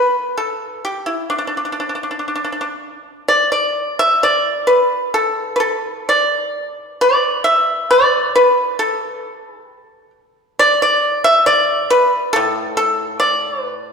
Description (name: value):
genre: chinese traditional, Chinese solo plucked strings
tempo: 60-68 BPM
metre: 4/4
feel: rubato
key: D zhi mode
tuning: A4 = 440 Hz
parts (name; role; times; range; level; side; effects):
- pipa; solo; 0.0-13.9 s; A2 to E5; -14 LUFS; equal; none
room: wet concert hall reverb, RT60 2.2 s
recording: recorded in a church or concert hall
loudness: -14 LUFS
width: side -5 dB against mid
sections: 0.0-3.3 A section; 3.3-13.9 B section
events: none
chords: none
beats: 0.40 1.32 2.29 | 3.27 4.22 5.15 6.08 | 7.01 7.92 8.82 9.71 | 10.60 11.47 12.35 13.24